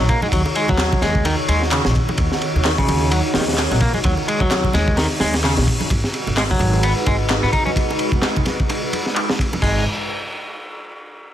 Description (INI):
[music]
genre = breakbeat, breaks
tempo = 129 BPM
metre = 4/4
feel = swing 58% on 16ths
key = G# minor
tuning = A4 = 440 Hz
[part]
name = lush unison pad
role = sustained chords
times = 0.0-9.8 s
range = D#3 to C#5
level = -25 LUFS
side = equal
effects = chorus, phaser, sidechain pumping
[part]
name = semi-hollow electric guitar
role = riff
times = 0.0-9.8 s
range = C#3 to D#4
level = -22 LUFS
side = left 1 dB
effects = ping-pong delay
[part]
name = upright bass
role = bass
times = 0.0-9.8 s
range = G#1 to G#2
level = -21 LUFS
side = equal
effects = none
[part]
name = crunchy breakbeat drum kit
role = drums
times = 0.1-9.7 s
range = crash cymbal, hi-hat, kick drum, ride cymbal, snare drum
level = -21 LUFS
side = equal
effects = none
[part]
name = bongos and congas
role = percussion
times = 0.1-9.6 s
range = none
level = -29 LUFS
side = right 3 dB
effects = none
[part]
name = electronic handclaps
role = drums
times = 0.8-9.3 s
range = none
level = -25 LUFS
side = equal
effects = overdrive, low-pass filter on snare, low-pass filter on room
[sound]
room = light reverb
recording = none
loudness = -16 LUFS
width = side -11 dB against mid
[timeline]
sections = 0.0-5.9 A section; 5.9-9.6 B section; 9.6-11.3 C section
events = filter sweep on drum 5.9-9.6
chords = 0.0 D#m7; 5.9 G#m7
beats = | 0.33 0.79 1.26 1.72 | 2.19 2.65 3.12 3.58 | 4.05 4.51 4.98 5.44 | 5.91 6.37 6.84 7.30 | 7.77 8.23 8.70 9.16 | 9.63